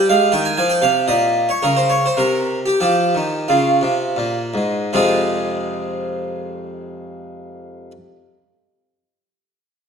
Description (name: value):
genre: classical, baroque-style suite movement for harpsichord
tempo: 78-119 BPM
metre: 3/4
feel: rubato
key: F minor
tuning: A4 = 440 Hz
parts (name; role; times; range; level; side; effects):
- harpsichord; solo; 0.0-7.9 s; F2 to Ab5; -16 LUFS; equal; none
room: wet scoring stage reverb, RT60 1.6 s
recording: none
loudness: -16 LUFS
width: side -6 dB against mid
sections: 0.0-4.9 A section; 4.9-9.3 B section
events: slowing down 0.3-4.9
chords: 0.0 Fm; 1.1 Bbm; 2.2 N.C.; 2.8 Fm